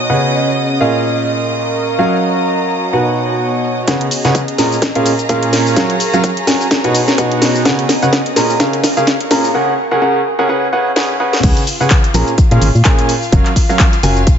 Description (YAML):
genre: piano house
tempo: 127 BPM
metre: 4/4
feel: swing 57% on 16ths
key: Db mixolydian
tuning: A4 = 436 Hz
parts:
  - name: warm chamber violin section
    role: sustained chords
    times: 0.0-14.4 s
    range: F4 to Eb6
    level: -23 LUFS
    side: right 1 dB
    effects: sidechain pumping
  - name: clear upright piano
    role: riff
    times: 0.0-14.2 s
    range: Bb2 to Bb5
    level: -15 LUFS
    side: right 1 dB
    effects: sidechain pumping, low-pass filter, tape echo
  - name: house drum kit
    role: drums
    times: 0.0-14.4 s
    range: crash cymbal, handclaps, hi-hat, shaker, snare drum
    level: -16 LUFS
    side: left 1 dB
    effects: overdrive, low-pass filter on perc, low-pass filter on snare, low-pass filter on hats, low-pass filter on cymbals, low-pass filter on room
  - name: airy breathy pad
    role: texture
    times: 0.0-9.5 s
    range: Cb4 to Db6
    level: -21 LUFS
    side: equal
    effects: chorus, sidechain pumping
  - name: electronic kick drum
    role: drums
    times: 3.9-14.4 s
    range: none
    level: -12 LUFS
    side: equal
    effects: high-pass filter on kick
  - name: organ-like FM bass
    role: bass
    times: 11.4-14.4 s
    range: Gb1 to Bb2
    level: -12 LUFS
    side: equal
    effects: sidechain pumping
room: moderate lush hall reverb, RT60 2.1 s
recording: high-pass filter, nothing above 7.8 kHz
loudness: -11 LUFS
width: side -8 dB against mid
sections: 0.0-3.9 A section; 3.9-11.4 B section; 11.4-14.4 C section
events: build-up 3.9-11.4; drum fill 3.9-9.5, 11.0-11.4; drop 11.4-14.4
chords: 0.1 Db7sus4; 0.8 Bbm7; 2.0 Gbmaj7; 2.9 Cb; 3.9 Db7sus4; 4.6 Bbm7; 5.8 Gbmaj7; 6.7 Cb; 7.7 Db7sus4; 8.4 Bbm7; 9.5 Gb; 10.5 Cb5; 11.4 Db7sus4; 12.1 Bbm7; 13.3 Gbmaj7